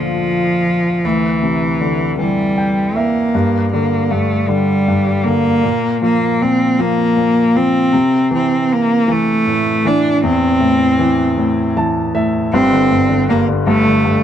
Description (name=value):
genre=pop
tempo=52 BPM (dotted quarters)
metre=6/8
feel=straight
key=unclear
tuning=A4 = 441 Hz
part: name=clear cello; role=melody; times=0.0-14.2 s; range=E3 to D4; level=-14 LUFS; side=right 1 dB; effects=none
part: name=clear grand piano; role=accompaniment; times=0.0-14.2 s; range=G1 to A5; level=-17 LUFS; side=left 2 dB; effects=none
room=light reverb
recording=dark, warm production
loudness=-13 LUFS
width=side -9 dB against mid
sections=0.0-3.3 A section; 3.3-12.5 B section; 12.5-14.2 C section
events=grand piano fill 2.2-3.3, 11.4-12.5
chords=0.0 Bb/D; 1.0 C/D; 3.3 G5; 5.6 Bb5; 7.9 Am; 12.5 G5